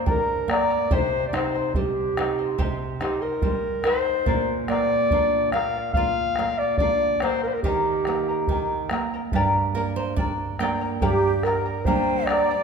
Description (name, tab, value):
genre	andean folk, Andean ensemble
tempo	71 BPM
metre	4/4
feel	straight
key	G minor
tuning	A4 = 439 Hz
part	mellow clarinet	melody	0.0-12.6 s	G4 to F5	-23 LUFS	left 2 dB	none
part	charango	accompaniment	0.0-12.6 s	G4 to C6	-29 LUFS	left 2 dB	none
part	nylon-string guitar	accompaniment	0.0-12.5 s	G2 to G5	-28 LUFS	right 6 dB	none
part	bombo	percussion	0.1-12.5 s	none	-28 LUFS	equal	none
part	breathy quena	second line	11.0-12.6 s	G4 to G5	-26 LUFS	right 4 dB	none
room	moderate concert hall reverb, RT60 2.3 s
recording	minimal, uncompressed stereo recording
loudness	-21 LUFS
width	side -6 dB against mid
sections	0.0-11.0 A section; 11.0-12.6 A section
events	nylon-string guitar fill 9.3-11.0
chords	0.0 Gm; 0.9 Cm; 4.3 Bb; 7.6 Eb; 9.3 Gm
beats	0.06 | 0.90 1.74 2.58 3.42 | 4.27 5.11 5.95 6.79 | 7.63 8.48 9.32 10.17 | 11.01 11.86